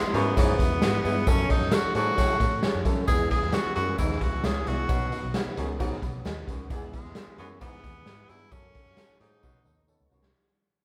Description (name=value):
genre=uptempo 1960s-style soul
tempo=132 BPM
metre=4/4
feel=straight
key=E major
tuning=A4 = 440 Hz
part: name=edgy tenor saxophone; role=melody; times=0.0-9.8 s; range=G#3 to G#4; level=-32 LUFS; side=equal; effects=none
part: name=warm upright piano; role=accompaniment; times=0.0-10.3 s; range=D#3 to B5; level=-36 LUFS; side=equal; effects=none
part: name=vintage muted fingered electric bass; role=bass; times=0.0-10.3 s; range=B1 to F#3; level=-35 LUFS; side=equal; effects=none
part: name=warm baritone saxophone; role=riff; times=0.1-10.3 s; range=E2 to B2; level=-35 LUFS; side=equal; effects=none
part: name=raw garage drum kit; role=drums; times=0.1-10.3 s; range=hi-hat, kick drum, snare drum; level=-30 LUFS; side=equal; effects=none
part: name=tambourine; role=percussion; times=0.1-10.2 s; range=none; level=-51 LUFS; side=equal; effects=none
part: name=mellow tonewheel organ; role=sustained chords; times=3.1-10.3 s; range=A4 to E6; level=-49 LUFS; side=equal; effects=none
room=moderate large studio reverb, RT60 1.3 s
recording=band playing live in one room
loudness=-26 LUFS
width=mono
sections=0.0-10.3 A section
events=fade-out 0.0-10.3; upright piano fill 5.8-6.7; drum fill 9.4-10.3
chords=0.0 E; 1.3 F#m; 3.1 E; 4.9 B; 6.7 E; 8.5 F#m; 9.4 Badd9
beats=0.37 0.82 | 1.27 1.73 2.18 2.63 | 3.08 3.54 3.99 4.44 | 4.89 5.35 5.80 6.25 | 6.71 7.16 7.61 8.07 | 8.52 8.97 9.43 9.88